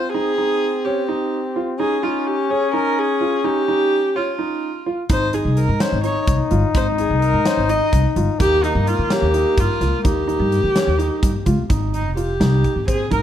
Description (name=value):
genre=progressive instrumental, band music in an uneven meter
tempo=254 BPM (eighths)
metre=7/8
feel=straight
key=Ab major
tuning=A4 = 439 Hz
part: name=rich viola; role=melody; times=0.0-13.2 s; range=Eb4 to Eb5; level=-21 LUFS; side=right 1 dB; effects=plate reverb
part: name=clear trombone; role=second line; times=0.0-11.5 s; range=Bb3 to Eb4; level=-24 LUFS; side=left 6 dB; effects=none
part: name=warm grand piano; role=arpeggios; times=0.0-13.2 s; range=C4 to F4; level=-25 LUFS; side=right 4 dB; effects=none
part: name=upright bass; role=bass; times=5.1-13.2 s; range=F1 to Eb3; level=-20 LUFS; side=equal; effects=none
part: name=big rock drum kit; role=drums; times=5.1-13.2 s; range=hi-hat, kick drum, snare drum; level=-23 LUFS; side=equal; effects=none
room=light reverb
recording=dark, warm production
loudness=-16 LUFS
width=side -10 dB against mid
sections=0.0-11.7 A section; 11.7-13.2 B section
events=viola solo 11.7-13.2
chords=0.0 Dbsus2; 5.1 Ab; 8.4 Eb7; 11.7 Ab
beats=| 0.15 0.38 0.62 0.85 1.09 1.33 1.56 | 1.80 2.03 2.27 2.50 2.74 2.98 3.21 | 3.45 3.68 3.92 4.16 4.39 4.63 4.86 | 5.10 5.33 5.57 5.81 6.04 6.28 6.51 | 6.75 6.99 7.22 7.46 7.69 7.93 8.16 | 8.40 8.63 8.87 9.11 9.34 9.58 9.81 | 10.05 10.29 10.52 10.76 10.99 11.23 11.46 | 11.70 11.94 12.17 12.41 12.65 12.88 13.12